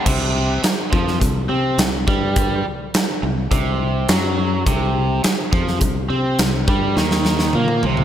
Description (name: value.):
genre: classic rock.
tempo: 104 BPM.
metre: 4/4.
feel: straight.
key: unclear.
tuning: A4 = 440 Hz.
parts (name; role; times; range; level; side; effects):
overdriven electric guitar; riff; 0.0-8.0 s; C3 to C4; -22 LUFS; right 1 dB; none.
modern bright fingered electric bass; bass; 0.1-8.0 s; C2 to C3; -21 LUFS; equal; none.
huge arena drum kit; drums; 0.1-8.0 s; crash cymbal, hi-hat, kick drum, snare drum, toms; -20 LUFS; equal; none.
room: moderate scoring stage reverb, RT60 2.1 s.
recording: big arena sound.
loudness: -16 LUFS.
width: side -10 dB against mid.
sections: 0.1-8.0 A section.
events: drum fill 7.0-8.0.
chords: 0.1 C5.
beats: | 0.07 0.64 1.22 1.79 | 2.37 2.94 3.52 4.09 | 4.67 5.24 5.82 6.39 | 6.97 7.54.